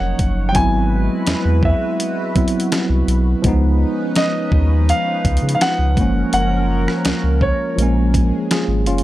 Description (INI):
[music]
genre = contemporary R&B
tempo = 83 BPM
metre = 4/4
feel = straight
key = unclear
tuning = A4 = 440 Hz
[part]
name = warm grand piano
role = melody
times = 0.0-8.1 s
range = Db5 to Ab5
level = -22 LUFS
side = equal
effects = analog delay
[part]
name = mellow tine electric piano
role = accompaniment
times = 0.0-9.0 s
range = F3 to Ab4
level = -21 LUFS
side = equal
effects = fast stereo tremolo
[part]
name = chorused pulse-width pad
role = sustained chords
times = 0.0-9.0 s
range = F3 to Db5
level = -25 LUFS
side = equal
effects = none
[part]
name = saturated sub bass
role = bass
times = 0.0-9.0 s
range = F1 to Db3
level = -17 LUFS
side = equal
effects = none
[part]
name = dusty soul sampler-style drum kit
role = drums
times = 0.2-9.0 s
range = hi-hat, kick drum, rim click, snare drum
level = -20 LUFS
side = equal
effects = none
[sound]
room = little or no reverb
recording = dry, gritty hardware recording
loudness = -15 LUFS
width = side -15 dB against mid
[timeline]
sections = 0.0-9.0 A section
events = none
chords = 0.0 Ebm9; 0.5 Ab7alt; 3.4 Db9; 6.0 Gbmaj7; 7.8 Bbm7